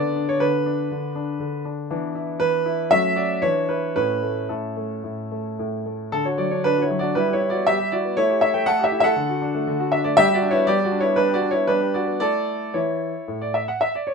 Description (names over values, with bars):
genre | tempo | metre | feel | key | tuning
classical-period piano sonatina | 108-122 BPM | 4/4 | rubato | A major, D major from 6.1 s | A4 = 438 Hz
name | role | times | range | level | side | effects
clear concert grand piano | solo | 0.0-14.1 s | A2 to G5 | -20 LUFS | equal | none
room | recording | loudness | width
light reverb | minimal, uncompressed stereo recording | -19 LUFS | side -5 dB against mid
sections
0.0-6.1 A section; 6.1-14.1 B section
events
none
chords
0.0 Bm/D; 1.9 E5; 2.9 F#m; 3.4 E5; 3.9 A; 6.1 D; 7.2 Em/G; 8.2 A5; 9.2 D; 10.2 G; 12.2 A